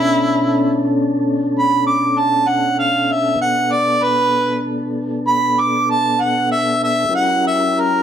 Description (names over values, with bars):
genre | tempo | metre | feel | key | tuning
blues | 65 BPM (dotted quarters) | 12/8 | straight | B minor | A4 = 439 Hz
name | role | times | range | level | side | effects
clear harmonica | melody | 0.0-8.0 s | E4 to D6 | -16 LUFS | right 1 dB | overdrive
mellow tonewheel organ | sustained chords | 0.0-8.0 s | B2 to A#4 | -19 LUFS | left 1 dB | slow rotary speaker
room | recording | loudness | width
wet stone room reverb, RT60 1.2 s | band playing live in one room | -14 LUFS | side -9 dB against mid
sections
0.0-8.0 A section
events
none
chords
0.0 Bm7; 7.1 F#7b9